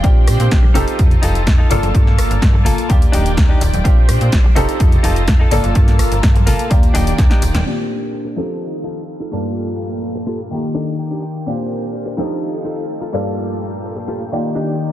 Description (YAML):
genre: filtered disco house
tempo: 126 BPM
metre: 4/4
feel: straight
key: Bb major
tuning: A4 = 439 Hz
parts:
  - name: bright grand piano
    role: accompaniment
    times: 0.0-14.9 s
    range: G2 to A5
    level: -23 LUFS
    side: equal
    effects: phaser, sidechain pumping, low-pass filter
  - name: string machine, full ensemble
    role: sustained chords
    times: 0.0-14.9 s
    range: Eb3 to D6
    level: -25 LUFS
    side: equal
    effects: ensemble chorus, sidechain pumping, low-pass filter
  - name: direct-recorded clean electric guitar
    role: riff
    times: 0.0-14.7 s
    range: Bb3 to G5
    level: -26 LUFS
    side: left 2 dB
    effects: sidechain pumping, low-pass filter
  - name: slap-like FM bass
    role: bass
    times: 0.0-7.6 s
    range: Eb1 to Bb2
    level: -17 LUFS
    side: equal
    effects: tube saturation, sidechain pumping, low-pass filter
  - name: electronic kick drum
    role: drums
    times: 0.0-7.3 s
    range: none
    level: -13 LUFS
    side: equal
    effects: small room ambience
  - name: house drum kit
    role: drums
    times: 0.0-7.6 s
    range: hi-hat, rim click, snare drum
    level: -24 LUFS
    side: equal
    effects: sidechain pumping on hats, low-pass filter on hats, small room ambience, low-pass filter on snare
  - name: tambourine and congas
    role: percussion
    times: 0.0-7.6 s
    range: none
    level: -27 LUFS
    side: left 1 dB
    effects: sidechain pumping on perc, low-pass filter on perc
room: digital ambience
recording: none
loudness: -13 LUFS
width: side -13 dB against mid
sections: 0.0-7.7 A section; 7.7-14.9 B section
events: drum fill 7.2-7.7; band accent 7.5; filter sweep 7.7-14.9; clean electric guitar fill 10.5-11.5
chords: 0.0 Bb69; 0.8 F7; 1.7 Gm9; 2.9 Ebmaj7; 3.8 Bb69; 4.6 F7; 5.5 Gm9; 6.7 Ebmaj7; 7.7 Bb69; 8.4 F7; 9.3 Gm9; 10.5 Ebmaj7; 11.5 Bb69; 12.2 F7; 13.1 Gm9; 14.3 Ebmaj7